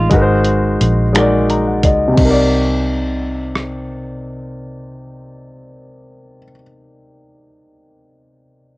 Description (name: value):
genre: slow six-eight R&B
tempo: 58 BPM (dotted quarters)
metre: 6/8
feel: straight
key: C minor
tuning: A4 = 436 Hz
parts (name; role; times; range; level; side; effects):
- warm grand piano; accompaniment; 0.0-8.8 s; C3 to Bb5; -16 LUFS; left 1 dB; cassette tape
- vintage muted fingered electric bass; bass; 0.0-6.5 s; Ab1 to Db2; -18 LUFS; equal; none
- dusty soul sampler-style drum kit; drums; 0.1-3.7 s; crash cymbal, finger snaps, hi-hat, kick drum, rim click; -19 LUFS; equal; cassette tape
room: light reverb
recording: home recording on cassette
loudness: -12 LUFS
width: side -21 dB against mid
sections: 0.0-2.2 A section; 2.2-6.3 B section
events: grand piano fill 1.1-2.2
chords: 0.1 Ab9; 2.2 Cm9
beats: | 0.10 1.14 | 2.17 3.21 | 4.24 5.28